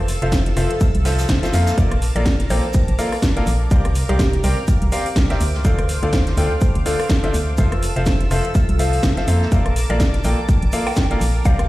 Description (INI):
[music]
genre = piano house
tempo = 124 BPM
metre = 4/4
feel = swing 57% on 16ths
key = F major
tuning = A4 = 440 Hz
[part]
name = analog string pad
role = sustained chords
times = 0.0-11.7 s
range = F4 to E6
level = -29 LUFS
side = equal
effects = ensemble chorus, sidechain pumping
[part]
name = organ-like FM bass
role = bass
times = 0.0-11.7 s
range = F1 to F2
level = -19 LUFS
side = equal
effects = sidechain pumping
[part]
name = house drum kit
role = drums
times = 0.1-11.7 s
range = hi-hat, rim click, snare drum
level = -26 LUFS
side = right 1 dB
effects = overdrive
[part]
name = vintage brush drum kit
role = drums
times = 0.1-11.6 s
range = hi-hat, shaker, snare drum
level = -35 LUFS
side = right 1 dB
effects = high-pass filter on hats, high-pass filter on snare, high-pass filter on perc, high-pass filter on room
[part]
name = clear concert grand piano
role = riff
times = 0.2-11.6 s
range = D3 to G5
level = -24 LUFS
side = left 1 dB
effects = sidechain pumping, dub echo
[part]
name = electronic kick drum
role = drums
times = 0.3-11.6 s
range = none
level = -18 LUFS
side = equal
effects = none
[part]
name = mallet-like synth pluck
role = melody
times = 2.2-4.8, 9.9-11.7 s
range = G4 to G5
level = -29 LUFS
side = equal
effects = chorus, vintage 12-bit sampler grit, dub echo
[sound]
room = light reverb, small room ambience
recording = played on a big sound system in a bare room, stone room reverb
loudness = -16 LUFS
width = side -17 dB against mid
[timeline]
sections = 0.0-11.7 A section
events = none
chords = 0.0 Fmaj7; 1.8 Bbmaj7; 3.7 C9sus4; 5.4 Dm7; 7.6 Fmaj7; 9.5 Bbmaj7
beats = 0.33 0.81 1.29 | 1.78 2.26 2.75 3.23 | 3.71 4.20 4.68 5.16 | 5.65 6.13 6.62 7.10 | 7.58 8.07 8.55 9.04 | 9.52 10.00 10.49 10.97 | 11.45